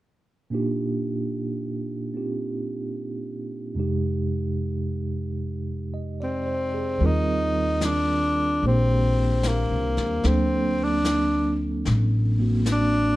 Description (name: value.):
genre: jazz ballad.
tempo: 74 BPM.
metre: 4/4.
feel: swing 66% on 8ths.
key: Eb major.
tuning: A4 = 440 Hz.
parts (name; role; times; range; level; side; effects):
tine electric piano; accompaniment; 0.5-13.2 s; F2 to Eb5; -26 LUFS; right 2 dB; medium tremolo.
breathy tenor saxophone; melody; 6.2-13.2 s; Bb3 to Eb4; -24 LUFS; left 1 dB; none.
upright bass; bass; 7.0-13.2 s; A1 to Eb2; -24 LUFS; left 1 dB; none.
vintage brush drum kit; drums; 7.0-13.2 s; brushed snare drum, hi-hat, snare drum; -34 LUFS; left 2 dB; none.
room: moderate large studio reverb, RT60 1.1 s.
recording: dark, warm production.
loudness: -22 LUFS.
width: side -17 dB against mid.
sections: 0.5-7.0 A section; 7.0-13.2 B section.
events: none.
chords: 0.5 Ebmaj9/Bb; 3.8 Fm9; 7.0 Eb6; 10.2 D7b13.